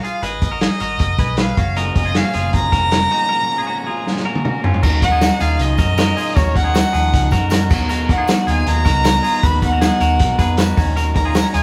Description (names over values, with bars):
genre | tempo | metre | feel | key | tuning
jangly indie pop | 157 BPM | 4/4 | straight | Eb minor | A4 = 437 Hz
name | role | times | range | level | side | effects
warm violin | melody | 0.0-11.6 s | Db5 to B5 | -22 LUFS | equal | none
clean electric guitar | arpeggios | 0.0-11.6 s | F3 to Cb5 | -27 LUFS | equal | none
vintage drum kit | drums | 0.0-11.6 s | crash cymbal, hi-hat, kick drum, snare drum, toms | -20 LUFS | equal | none
vintage muted fingered electric bass | bass | 0.2-11.6 s | F1 to Gb2 | -22 LUFS | equal | none
crunchy overdriven guitar | accompaniment | 1.8-11.6 s | Gb2 to Bb4 | -26 LUFS | equal | none
tambourine | percussion | 4.8-11.6 s | none | -40 LUFS | equal | none
room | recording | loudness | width
moderate studio reverb, RT60 0.6 s | band playing live in one room | -16 LUFS | mono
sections
0.0-4.8 A section; 4.8-11.6 B section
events
break 3.3-4.8; drum fill 4.1-4.8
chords
0.0 Abm7; 1.6 Gbmaj7; 4.8 Ebm7; 7.7 Bmaj7; 10.8 Gb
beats
| 0.23 0.61 1.00 1.38 | 1.77 2.15 2.53 2.92 | 3.30 3.68 4.07 4.45 | 4.83 5.22 5.60 5.98 | 6.37 6.75 7.13 7.52 | 7.90 8.28 8.67 9.05 | 9.43 9.81 10.20 10.58 | 10.96 11.35